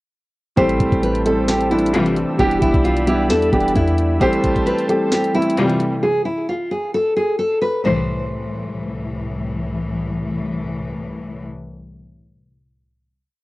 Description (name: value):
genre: hip hop, trap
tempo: 132 BPM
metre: 4/4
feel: half-time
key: A minor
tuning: A4 = 440 Hz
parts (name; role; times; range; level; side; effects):
- nylon-string guitar; melody; 0.6-9.2 s; E4 to C5; -20 LUFS; left 1 dB; cassette tape, tape echo
- dark concert grand piano; accompaniment; 0.6-6.0 s; E3 to A4; -19 LUFS; right 1 dB; cassette tape
- warm analog pad; sustained chords; 0.6-6.0 s; G4 to E6; -30 LUFS; equal; chorus, cassette tape
- clean 808-style bass; bass; 0.6-4.2 s; E1 to E2; -21 LUFS; equal; none
- trap drum kit; drums; 0.6-5.9 s; hi-hat, kick drum, snare drum; -23 LUFS; equal; cassette tape
- rich studio string section; stabs; 1.9-2.4, 5.6-11.4 s; C2 to G3; -22 LUFS; left 2 dB; cassette tape
room: little or no reverb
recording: home recording on cassette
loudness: -16 LUFS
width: side -19 dB against mid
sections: 0.6-7.8 hook; 7.8-11.5 final chord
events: none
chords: 0.6 Am7; 2.4 Em7; 4.2 Am7; 6.0 N.C.; 7.8 Am